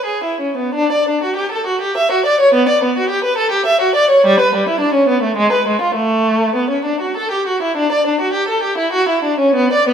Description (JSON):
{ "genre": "classical, baroque-style suite movement for unaccompanied violin", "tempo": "102 BPM", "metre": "3/4", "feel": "uneven beats, rubato", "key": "D major", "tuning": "A4 = 443 Hz", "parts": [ { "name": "rich violin", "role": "solo", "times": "0.0-9.9 s", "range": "G3 to E5", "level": "-13 LUFS", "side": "equal", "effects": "none" } ], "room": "wet scoring stage reverb, RT60 1.6 s", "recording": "minimal, uncompressed stereo recording", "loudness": "-13 LUFS", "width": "side -8 dB against mid", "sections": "0.7-9.9 A section", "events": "none", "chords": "none", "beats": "0.07 | 0.75 1.37 1.97 | 2.54 3.11 3.68 | 4.27 4.83 5.39 | 5.97 6.57 7.17 | 7.78 8.36 8.94 | 9.56" }